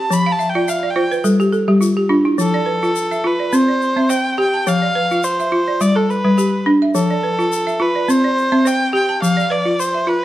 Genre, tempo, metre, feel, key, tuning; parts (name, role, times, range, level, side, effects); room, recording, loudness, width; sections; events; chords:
west african traditional, West African string and xylophone music; 105 BPM; 4/4; swing 55% on 16ths; F lydian; A4 = 441 Hz
clear erhu; melody; 0.0-10.2 s; A4 to B5; -19 LUFS; equal
balafon; arpeggios; 0.0-10.2 s; F3 to A5; -16 LUFS; equal
egg shaker; percussion; 0.1-9.9 s; -32 LUFS; left 8 dB
moderate recital hall reverb, RT60 1.7 s; dark, warm production; -14 LUFS; side -14 dB against mid
0.0-2.4 A section; 2.4-10.2 B section
erhu solo 0.0-2.4; balafon fill 0.3-2.4
0.1 F; 1.3 G5; 2.4 F; 3.5 C; 4.7 F; 5.8 G; 6.9 F; 8.1 C; 9.2 F